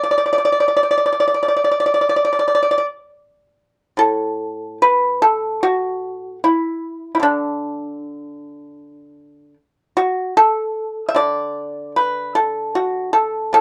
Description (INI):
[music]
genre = chinese traditional, Chinese solo plucked strings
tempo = 75 BPM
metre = 4/4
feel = rubato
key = D gong mode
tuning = A4 = 439 Hz
[part]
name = pipa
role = solo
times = 0.0-13.6 s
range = A2 to E5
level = -18 LUFS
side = equal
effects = none
[sound]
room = light reverb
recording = dark, warm production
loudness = -18 LUFS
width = mono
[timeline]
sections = 0.0-4.0 A section; 4.0-13.6 B section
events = none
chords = none